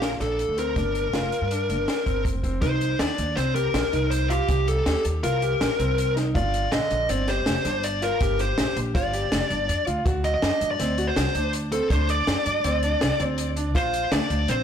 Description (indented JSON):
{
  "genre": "progressive instrumental, band music in an uneven meter",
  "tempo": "162 BPM",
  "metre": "5/4",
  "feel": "straight",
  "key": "G minor",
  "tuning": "A4 = 440 Hz",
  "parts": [
    { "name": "fuzz lead guitar", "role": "melody", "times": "0.0-14.6 s", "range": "G4 to Eb5", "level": "-25 LUFS", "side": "left 2 dB", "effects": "distortion, ping-pong delay" },
    { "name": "clear grand piano", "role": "arpeggios", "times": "0.0-14.6 s", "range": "D3 to G4", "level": "-30 LUFS", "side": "right 2 dB", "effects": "ping-pong delay" },
    { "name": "upright bass", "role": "bass", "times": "0.0-14.6 s", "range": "F1 to G2", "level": "-27 LUFS", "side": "equal", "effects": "transformer saturation" },
    { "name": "open jazz drum kit", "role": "drums", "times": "0.0-14.6 s", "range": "hi-hat, kick drum, snare drum", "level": "-28 LUFS", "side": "equal", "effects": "none" }
  ],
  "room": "moderate studio reverb, RT60 0.7 s",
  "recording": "blown-out, overdriven recording, overdrive",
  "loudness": "-21 LUFS",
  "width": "side -8 dB against mid",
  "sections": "0.0-2.6 A section; 2.6-14.6 B section",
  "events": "none",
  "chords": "0.0 Bbmaj7; 0.8 Gm7; 2.6 Cm7; 6.3 G7(no3); 10.1 D7; 13.7 Bb",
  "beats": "0.02 0.39 | 0.76 1.13 1.51 1.88 2.25 | 2.62 3.00 3.37 3.74 4.12 | 4.49 4.86 5.23 5.61 5.98 | 6.35 6.72 7.09 7.46 7.83 | 8.21 8.58 8.95 9.32 9.69 | 10.06 10.43 10.79 11.16 11.53 | 11.90 12.27 12.64 13.01 13.38 | 13.74 14.11 14.48"
}